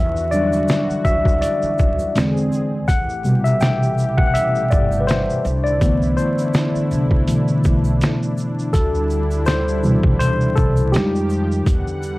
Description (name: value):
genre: lo-fi hip hop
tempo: 82 BPM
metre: 4/4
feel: swing 55% on 16ths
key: A dorian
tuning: A4 = 440 Hz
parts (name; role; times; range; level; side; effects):
- tine electric piano; accompaniment; 0.0-12.2 s; B2 to G5; -18 LUFS; left 1 dB; medium stereo tremolo, cassette tape, low-pass filter
- warm analog pad; sustained chords; 0.0-12.2 s; D3 to F#5; -27 LUFS; equal; chorus, tremolo, low-pass filter
- upright bass; bass; 0.0-12.2 s; G1 to F2; -24 LUFS; equal; none
- trip hop sampler-style drum kit; drums; 0.2-12.2 s; hi-hat, kick drum, shaker, snare drum; -19 LUFS; equal; none
- egg shaker; percussion; 0.3-12.2 s; none; -43 LUFS; right 3 dB; none
room: light reverb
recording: dry, gritty hardware recording, vinyl crackle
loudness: -16 LUFS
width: side -20 dB against mid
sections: 0.0-12.2 A section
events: tine electric piano solo 0.0-12.2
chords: 0.0 Em9; 2.2 Eaug7; 2.9 Am7; 5.4 Cmaj13; 8.7 D13sus4; 10.9 Fm9; 11.7 Em9